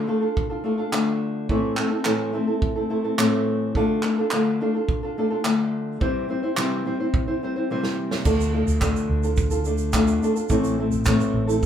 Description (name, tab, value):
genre	acoustic pop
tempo	107 BPM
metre	4/4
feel	straight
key	D minor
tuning	A4 = 441 Hz
part	nylon-string guitar	accompaniment	0.0-11.7 s	A2 to C5	-22 LUFS	left 1 dB	none
part	natural country drum kit	drums	0.4-11.7 s	crash cymbal, handclaps, kick drum, snare drum	-26 LUFS	right 2 dB	none
part	fretless electric bass	bass	8.3-11.7 s	A1 to D2	-24 LUFS	right 1 dB	none
part	egg shaker	percussion	8.3-11.7 s	none	-38 LUFS	right 8 dB	none
room	moderate studio reverb, RT60 0.6 s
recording	band playing live in one room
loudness	-20 LUFS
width	side -9 dB against mid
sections	0.0-8.3 A section; 8.3-11.7 B section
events	drum fill 7.1-8.3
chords	0.0 Dm; 1.5 Am; 3.8 Dm; 6.0 C; 8.3 Dm; 10.5 Am